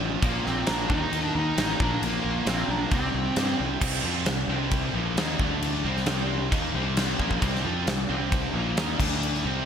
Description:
hard rock; 133 BPM; 4/4; straight; C minor; A4 = 440 Hz
heavy high-gain guitar; riff; 0.0-9.7 s; F2 to F4; -31 LUFS; right 10 dB; distortion
overdriven semi-hollow guitar; riff; 0.0-9.7 s; F2 to F4; -32 LUFS; left 12 dB; analog chorus
fuzz fingered electric bass; bass; 0.0-9.7 s; A1 to G2; -30 LUFS; equal; overdrive
huge arena drum kit; drums; 0.2-9.4 s; crash cymbal, kick drum, snare drum; -27 LUFS; equal
dark smooth lead guitar; melody; 0.3-3.6 s; Bb3 to Eb4; -31 LUFS; right 1 dB; overdrive, digital delay
octave-fuzz lead guitar; second line; 0.3-3.6 s; F4 to Bb4; -35 LUFS; right 2 dB; distortion, digital delay
light reverb, small room ambience; bright 1980s-style digital production; -23 LUFS; side -8 dB against mid
0.0-3.8 A section; 3.8-9.7 B section
0.2 Bb5; 0.9 Eb5; 1.8 Bb5; 2.9 C5; 3.8 Cm; 5.4 D5; 5.8 Cm; 9.0 D5
| 0.23 0.68 1.12 1.57 | 2.02 2.47 2.92 3.37 | 3.82 4.27 4.72 5.17 | 5.62 6.07 6.52 6.97 | 7.42 7.87 8.32 8.77 | 9.22

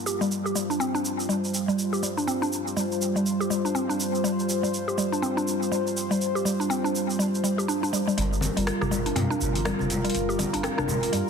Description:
afro house; 122 BPM; 4/4; swing 60% on 16ths; G minor; A4 = 440 Hz
warm analog pad; sustained chords; 0.0-11.3 s; G3 to C5; -28 LUFS; equal; chorus
mallet-like synth pluck; arpeggios; 0.1-11.3 s; G3 to G4; -27 LUFS; equal; chorus, dub echo
afro-pop drum kit; drums; 0.1-11.2 s; cabasa, hi-hat, rim click, toms; -32 LUFS; right 1 dB; soft clipping on snare
round analog bass; bass; 8.2-11.2 s; F1 to G2; -31 LUFS; equal
congas; percussion; 8.2-11.1 s; -31 LUFS; left 2 dB
light reverb; dense, heavily limited modern master; -23 LUFS; side -6 dB against mid
0.0-8.2 A section; 8.2-11.3 B section
filter sweep on analog synth pad 0.0-8.2; build-up 8.2-11.3
0.0 G7(no3); 8.2 Gm7
| 0.31 0.80 1.29 1.78 | 2.28 2.77 3.26 3.75 | 4.24 4.74 5.23 5.72 | 6.21 6.70 7.19 7.69 | 8.18 8.67 9.16 9.65 | 10.14 10.64 11.13

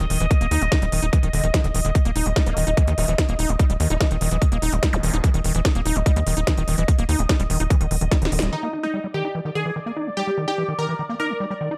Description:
psychedelic trance; 146 BPM; 4/4; straight; Eb major; A4 = 442 Hz
evolving wavetable pad; sustained chords; 0.0-11.8 s; D5 to Eb5; -32 LUFS; equal; phaser, built-in reverb, sidechain pumping
overdriven acid bass; riff; 0.0-11.7 s; D3 to Eb4; -30 LUFS; equal; sidechain pumping, digital delay
tight sequencer bass; bass; 0.0-8.5 s; Eb1 to Eb2; -25 LUFS; equal
techno drum kit; drums; 0.0-8.5 s; hi-hat, snare drum; -29 LUFS; equal; low-pass filter on hats, low-pass filter on cymbals, low-pass filter on snare, low-pass filter on room
electronic kick drum; drums; 0.3-8.2 s; -21 LUFS; equal
vowel-sweep wobble bass; second line; 2.5-4.1 s; Bb3 to Eb4; -40 LUFS; equal
zap; sound effects; 4.9-5.0 s; -32 LUFS; equal
supersaw stab; melody; 8.5-11.4 s; Eb4 to Bb4; -28 LUFS; equal; phaser, sidechain pumping, delay
light reverb, digital ambience; -21 LUFS; mono
0.0-8.5 A section; 8.5-11.8 B section
drum fill 8.1-8.5; band accent 8.4
0.0 Eb5
| 0.31 0.72 1.13 1.54 | 1.95 2.36 2.77 3.18 | 3.59 4.00 4.42 4.83 | 5.24 5.65 6.06 6.47 | 6.88 7.29 7.70 8.12 | 8.53 8.94 9.35 9.76 | 10.17 10.58 10.99 11.40

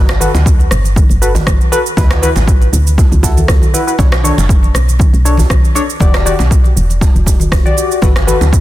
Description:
afro house; 119 BPM; 4/4; swing 54% on 16ths; A4 = 440 Hz
warm analog keys; stabs; 0.0-8.4 s; D4 to D5; -17 LUFS; left 2 dB; chorus, sidechain pumping, digital delay
woody FM bass; bass; 0.0-8.6 s; E1 to D2; -13 LUFS; equal; tube saturation, sidechain pumping
electronic rim click and shaker; drums; 0.1-8.6 s; -20 LUFS; right 3 dB; soft clipping on snare
djembe; percussion; 0.1-8.5 s; -23 LUFS; right 2 dB
congas; percussion; 0.2-8.4 s; -22 LUFS; left 1 dB
electronic kick drum; drums; 0.5-8.6 s; -11 LUFS; equal
digital ambience; dense, heavily limited modern master; -8 LUFS; side -15 dB against mid
0.0-8.6 A section
0.0 Gmaj7; 2.0 D6; 4.0 Bm7; 6.0 Em7; 8.0 Gmaj7
0.46 0.96 1.47 | 1.97 2.48 2.98 3.48 | 3.99 4.49 5.00 5.50 | 6.01 6.51 7.01 7.52 | 8.02 8.53

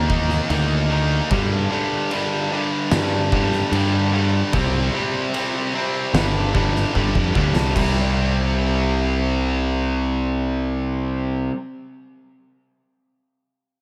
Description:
post-rock; 74 BPM; 4/4; straight; C minor; A4 = 440 Hz
distorted electric guitar; riff; 0.0-11.6 s; G2 to Eb4; -24 LUFS; equal; overdrive
fuzz picked electric bass; bass; 0.0-11.5 s; G1 to G2; -24 LUFS; equal; overdrive
oversized low-tuned drum kit; drums; 0.1-7.9 s; crash cymbal, kick drum, snare drum; -28 LUFS; equal
light reverb, small room ambience; -21 LUFS; mono
0.0-7.8 A section; 7.8-11.0 B section
drum fill 6.9-7.8
0.0 Eb5; 1.3 G5; 4.5 C5; 6.1 G5; 7.8 C5
0.51 | 1.31 2.12 2.92 3.73 | 4.53 5.34 6.14 6.95 | 7.75 8.56 9.36 10.17

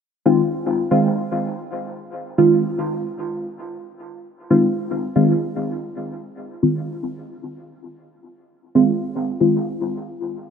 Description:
techno; 113 BPM; 4/4; swing 54% on 16ths; F minor; A4 = 436 Hz
deep mellow chord stab; stabs; 0.3-9.6 s; Eb3 to F4; -18 LUFS; equal; chorus, phaser, vintage 12-bit sampler grit, dub echo
moderate plate reverb, RT60 3.2 s; echo-heavy mix; -18 LUFS; side -7 dB against mid
0.0-10.5 A section
0.0 Fm7
0.38 0.91 1.44 | 1.97 2.50 3.03 3.56 | 4.10 4.63 5.16 5.69 | 6.22 6.75 7.28 7.81 | 8.34 8.87 9.40

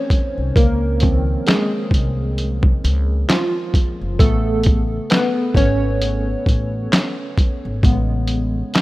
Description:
lo-fi hip hop; 66 BPM; 4/4; swing 58% on 16ths; Db major; A4 = 441 Hz
warm analog keys; accompaniment; 0.0-8.8 s; C#3 to Db5; -21 LUFS; equal; chorus, tremolo, low-pass filter
lo-fi sampler-style drum kit; drums; 0.1-8.8 s; handclaps, hi-hat, kick drum, snare drum; -16 LUFS; equal; overdrive
upright bass; bass; 0.4-8.6 s; Gb1 to Db2; -20 LUFS; equal
digital ambience; rough home demo mix; -15 LUFS; side -18 dB against mid
0.0-8.8 A section
synth keys solo 0.0-8.8
0.0 Dbmaj9; 4.2 Amaj9
| 0.56 1.47 2.38 3.29 | 4.20 5.11 6.02 6.92 | 7.83 8.74

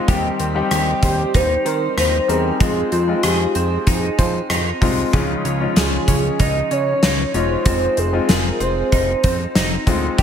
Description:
1980s-style pop; 95 BPM; 4/4; straight; F minor; A4 = 440 Hz
clear baby grand piano; accompaniment; 0.0-10.2 s; Db3 to Bb4; -23 LUFS; left 5 dB
twelve-string electric guitar; riff; 0.0-10.2 s; F3 to Ab4; -25 LUFS; right 4 dB; lush chorus, tape echo
fat analog bass; bass; 0.1-10.2 s; E1 to F3; -22 LUFS; equal
gated 80s drum kit; drums; 0.1-10.2 s; hi-hat, kick drum, rim click, snare drum; -18 LUFS; equal
warm velvety synth lead; melody; 1.0-9.9 s; F4 to Eb5; -21 LUFS; equal; chorus, tape echo
moderate lush hall reverb, RT60 1.9 s, studio reverb; dreamy mix soaked in reverb; -16 LUFS; side -8 dB against mid
0.0-10.2 A section
0.1 Cm/Eb; 2.6 Fm7; 5.1 Dbadd9; 7.7 Fm7
| 0.08 0.71 1.34 1.98 | 2.61 3.24 3.87 4.50 | 5.13 5.76 6.40 7.03 | 7.66 8.29 8.92 9.55 | 10.19

